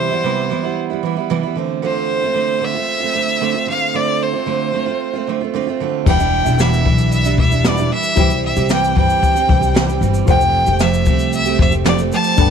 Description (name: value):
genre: acoustic pop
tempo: 114 BPM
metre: 4/4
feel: straight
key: unclear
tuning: A4 = 441 Hz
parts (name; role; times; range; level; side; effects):
- clear violin; melody; 0.0-12.5 s; C5 to A5; -19 LUFS; left 1 dB; none
- picked steel-string acoustic guitar; accompaniment; 0.0-12.5 s; E2 to A4; -19 LUFS; right 10 dB; none
- warm upright piano; accompaniment; 6.1-12.5 s; D4 to G5; -27 LUFS; left 15 dB; none
- upright bass; bass; 6.1-12.5 s; E1 to C2; -18 LUFS; left 3 dB; none
- jazz brush drum kit; drums; 6.1-12.5 s; crash cymbal, kick drum, shaker, snare drum; -18 LUFS; left 2 dB; none
room: light reverb, small room ambience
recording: 1960s-style stereo with parts hard left and right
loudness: -14 LUFS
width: side -7 dB against mid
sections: 0.0-6.1 A section; 6.1-12.5 B section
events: none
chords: 0.0 Cmaj7; 1.6 Dm7; 6.1 Em7; 8.2 C; 10.3 Fadd9